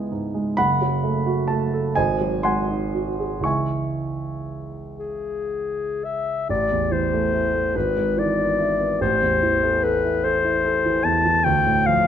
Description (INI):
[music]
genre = classical, romantic duo for clarinet and grand piano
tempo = 38-50 BPM (dotted quarters)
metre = 6/8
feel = rubato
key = C# minor, A minor from 6.5 s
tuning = A4 = 438 Hz
[part]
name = dark concert grand piano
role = accompaniment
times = 0.0-12.1 s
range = F#1 to C#6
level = -22 LUFS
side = right 2 dB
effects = none
[part]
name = mellow clarinet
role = melody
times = 5.0-12.1 s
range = G#4 to A5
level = -20 LUFS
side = left 4 dB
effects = none
[sound]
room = moderate recital hall reverb, RT60 1.5 s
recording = none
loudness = -19 LUFS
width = side -9 dB against mid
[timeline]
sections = 0.0-6.5 A section; 6.5-12.1 B section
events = none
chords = 0.0 E/C#; 0.6 F#m; 2.0 G#7; 3.4 C#m; 6.5 Am; 7.8 E7/G#; 9.0 Am; 11.4 Dm